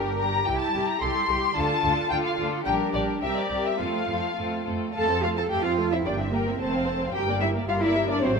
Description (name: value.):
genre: quick classical-period movement for string orchestra.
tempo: 110 BPM.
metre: 2/4.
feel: straight.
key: F major.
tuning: A4 = 439 Hz.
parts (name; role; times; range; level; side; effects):
muted studio violin section; melody; 0.0-8.4 s; Bb4 to C6; -28 LUFS; left 4 dB; none.
muted studio violin section; second line; 0.0-8.4 s; F4 to A5; -30 LUFS; left 4 dB; none.
muted studio viola section; accompaniment; 0.0-8.4 s; D3 to C5; -31 LUFS; right 2 dB; none.
muted studio cello section; bass; 0.0-8.3 s; Bb3 to A4; -29 LUFS; right 2 dB; none.
muted studio double bass section; bass; 0.0-8.4 s; F1 to F2; -32 LUFS; right 3 dB; none.
room: moderate scoring stage reverb, RT60 1.6 s.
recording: none.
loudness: -23 LUFS.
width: side -5 dB against mid.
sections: 0.0-5.0 A section; 5.0-8.4 A section.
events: none.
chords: 0.5 C; 1.6 Dm; 2.7 Gm; 3.2 C5; 3.8 F; 6.1 C7/G; 6.6 F; 7.1 Gm.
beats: | 0.47 1.02 | 1.56 2.11 | 2.67 3.23 | 3.80 4.38 | 4.95 5.51 | 6.05 6.60 | 7.15 7.69 | 8.23.